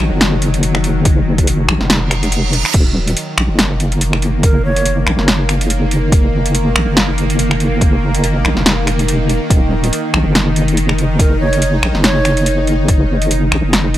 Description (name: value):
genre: deep dubstep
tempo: 142 BPM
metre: 4/4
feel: swing 57% on 16ths, half-time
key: Eb minor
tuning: A4 = 440 Hz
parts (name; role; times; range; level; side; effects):
- bowed-like drone; sustained chords; 0.0-14.0 s; Eb3 to Eb4; -19 LUFS; left 1 dB; built-in reverb, phaser
- deep soft wobble bass; bass; 0.0-14.0 s; Eb1 to Bb1; -15 LUFS; equal; chorus
- deep house drum kit; drums; 0.0-14.0 s; crash cymbal, finger snaps, hi-hat, snare drum; -16 LUFS; equal; overdrive
- electronic kick drum; drums; 1.1-13.0 s; none; -12 LUFS; equal; overdrive
- reverse cymbal; sound effects; 2.0-2.7 s; none; -23 LUFS; right 6 dB; none
- breathy bright low ney; melody; 4.4-5.0, 11.2-12.6 s; Bb4 to Db5; -22 LUFS; right 3 dB; dub echo
room: light reverb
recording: none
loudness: -12 LUFS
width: side -13 dB against mid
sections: 0.0-14.0 A section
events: reverse cymbal 2.0-2.7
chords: 0.0 Ebm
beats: 0.21 0.63 | 1.05 1.48 1.90 2.32 | 2.74 3.17 3.59 4.01 | 4.43 4.86 5.28 5.70 | 6.12 6.55 6.97 7.39 | 7.81 8.24 8.66 9.08 | 9.51 9.93 10.35 10.77 | 11.20 11.62 12.04 12.46 | 12.88 13.31 13.73